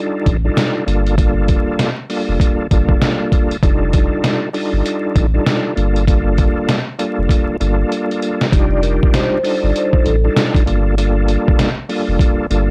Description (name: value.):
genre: hip hop, boom-bap hip-hop.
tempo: 98 BPM.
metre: 4/4.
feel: swing 61% on 16ths.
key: G minor.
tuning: A4 = 440 Hz.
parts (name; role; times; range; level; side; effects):
bright tonewheel organ; accompaniment; 0.0-12.7 s; G3 to A4; -21 LUFS; equal; chorus vibrato, fast rotary speaker.
soft dub sub bass; bass; 0.3-12.7 s; F1 to A1; -19 LUFS; equal; transformer saturation.
trip hop sampler-style drum kit; drums; 0.3-12.7 s; hi-hat, kick drum, snare drum; -19 LUFS; equal; vintage 12-bit sampler grit.
vibraphone with soft mallets; melody; 8.7-10.3 s; A4 to D5; -23 LUFS; equal; none.
room: little or no reverb.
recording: dry, gritty hardware recording, vinyl crackle.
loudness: -16 LUFS.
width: mono.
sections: 0.0-8.5 A section; 8.5-12.7 B section.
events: drum fill 7.3-8.5.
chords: 0.0 F13; 0.9 Gm9; 3.6 F13; 5.8 Gm9; 8.5 F13; 10.7 Gm9.